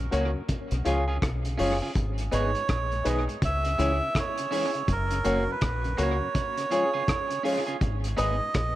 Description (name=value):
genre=roots reggae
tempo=82 BPM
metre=4/4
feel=swing 61% on 16ths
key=unclear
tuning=A4 = 440 Hz
part: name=mellow tonewheel organ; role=accompaniment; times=0.0-8.5 s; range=F#2 to C#4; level=-36 LUFS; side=left 1 dB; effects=overdrive, chorus vibrato, slow rotary speaker, tape echo
part: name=deep dub fingered electric bass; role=bass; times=0.0-8.8 s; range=F#1 to C#2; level=-28 LUFS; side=equal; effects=none
part: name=electric guitar at the edge of break-up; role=accompaniment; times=0.1-8.4 s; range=A#3 to G#4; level=-34 LUFS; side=right 4 dB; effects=tape echo
part: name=warm upright piano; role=stabs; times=0.1-8.4 s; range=D#4 to C#5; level=-30 LUFS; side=left 3 dB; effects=none
part: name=cloth-damped thuddy drum kit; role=drums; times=0.1-8.8 s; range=hi-hat, kick drum, rim click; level=-30 LUFS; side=equal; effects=tape echo
part: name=melodica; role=melody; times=2.3-8.8 s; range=A#4 to E5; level=-30 LUFS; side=right 3 dB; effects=tape echo
room=light reverb, studio ambience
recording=echo-heavy mix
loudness=-24 LUFS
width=side -14 dB against mid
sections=0.0-8.8 A section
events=none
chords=0.5 C#; 2.0 G#m; 3.4 C#m; 4.9 F#; 6.3 C#; 7.8 G#m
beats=0.49 1.22 | 1.95 2.69 3.42 4.15 | 4.88 5.62 6.35 7.08 | 7.82 8.55